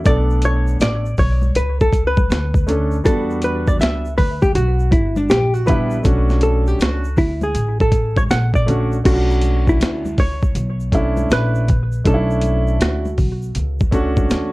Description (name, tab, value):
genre	hip hop, jazz-hop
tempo	80 BPM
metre	4/4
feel	swing 65% on 16ths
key	B minor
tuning	A4 = 440 Hz
part	hollow-body jazz guitar	melody	0.0-14.3 s	D4 to F#5	-21 LUFS	equal	analog delay, plate reverb
part	clear concert grand piano	accompaniment	0.0-14.5 s	G3 to A4	-21 LUFS	right 1 dB	plate reverb
part	upright bass	bass	0.1-14.5 s	G1 to E2	-19 LUFS	equal	none
part	boom bap sampler-style drum kit	drums	0.1-14.5 s	crash cymbal, hi-hat, kick drum, snare drum	-18 LUFS	equal	overdrive
part	tube shaker and congas	percussion	0.1-14.5 s	none	-29 LUFS	left 1 dB	none
room	light reverb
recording	dark, warm production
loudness	-15 LUFS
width	side -20 dB against mid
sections	0.0-9.1 A section; 9.1-14.5 B section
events	hollow-body jazz guitar solo 0.0-9.1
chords	0.0 Bm9; 3.1 Em9; 6.1 Bm9